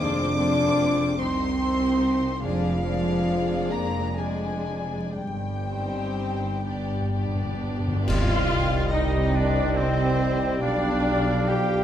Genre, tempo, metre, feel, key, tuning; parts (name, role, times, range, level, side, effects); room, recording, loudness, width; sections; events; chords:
classical, slow romantic movement for symphony orchestra; 40-52 BPM (dotted quarters); 6/8; rubato; C minor; A4 = 440 Hz
warm chamber violin section; melody; 0.0-11.8 s; C5 to D6; -33 LUFS; left 2 dB
rich chamber violin section; second line; 0.0-11.8 s; G4 to G5; -35 LUFS; left 3 dB
rich chamber viola section; accompaniment; 0.0-11.8 s; Ab3 to G4; -30 LUFS; equal
clear French horn section; sustained chords; 0.0-11.8 s; Eb3 to G4; -28 LUFS; left 1 dB
rich chamber cello section; bass; 0.0-11.8 s; C2 to C3; -31 LUFS; right 1 dB
warm chamber double bass section; bass; 0.0-11.8 s; F1 to C2; -30 LUFS; right 1 dB
cymbal swell, clash cymbals and concert bass drum; percussion; 5.2-9.7 s; -31 LUFS; equal
timpani; percussion; 6.7-8.0 s; G2; -31 LUFS; left 2 dB
bright oboe; second line; 8.1-11.8 s; C4 to G4; -34 LUFS; right 1 dB
hollow flute section; second line; 8.1-11.8 s; G5; -34 LUFS; right 1 dB
mellow clarinet; second line; 8.1-11.8 s; Eb5 to F5; -33 LUFS; left 2 dB
clear bassoon; accompaniment; 8.1-11.8 s; G3; -32 LUFS; right 2 dB
mellow tuba; bass; 8.1-11.8 s; B1 to C2; -29 LUFS; right 2 dB
moderate scoring stage reverb, RT60 1.9 s; vinyl crackle; -22 LUFS; side -10 dB against mid
0.0-8.1 A section; 8.1-11.8 B section
timpani fill 6.6-8.1; band accent 8.1-8.9
0.0 Fm; 1.2 Cm; 2.4 Ddim/F; 5.2 Cm/G; 6.6 G; 8.1 Cm; 10.6 G7/B